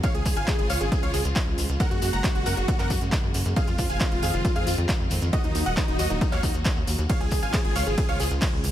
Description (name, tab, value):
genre	uplifting trance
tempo	136 BPM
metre	4/4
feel	straight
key	Db major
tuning	A4 = 440 Hz
part	dense compressed supersaw	melody	0.0-8.3 s	Eb4 to Bb5	-31 LUFS	equal	sidechain pumping, ping-pong delay
part	wide unison pluck	second line	0.0-8.3 s	Eb4 to Bb5	-35 LUFS	equal	cassette tape, sidechain pumping, ping-pong delay
part	warm studio string section	sustained chords	0.0-8.7 s	Db3 to Gb4	-32 LUFS	equal	sidechain pumping
part	big-room dance drum kit	drums	0.0-8.7 s	handclaps, hi-hat, ride cymbal	-33 LUFS	right 2 dB	overdrive, sidechain pumping on hats, sidechain pumping on cymbals
part	electronic kick drum	drums	0.0-8.5 s	none	-25 LUFS	equal	overdrive
part	shekere	percussion	0.0-8.7 s	none	-37 LUFS	left 4 dB	none
part	tight sequencer bass	bass	0.1-8.7 s	Eb1 to Gb2	-28 LUFS	equal	tube saturation, sidechain pumping
room	little or no reverb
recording	none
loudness	-22 LUFS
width	side -12 dB against mid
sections	0.0-8.7 A section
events	none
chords	0.0 Db; 1.8 Gbadd9; 3.6 Fm7; 5.3 Ebm; 7.1 Db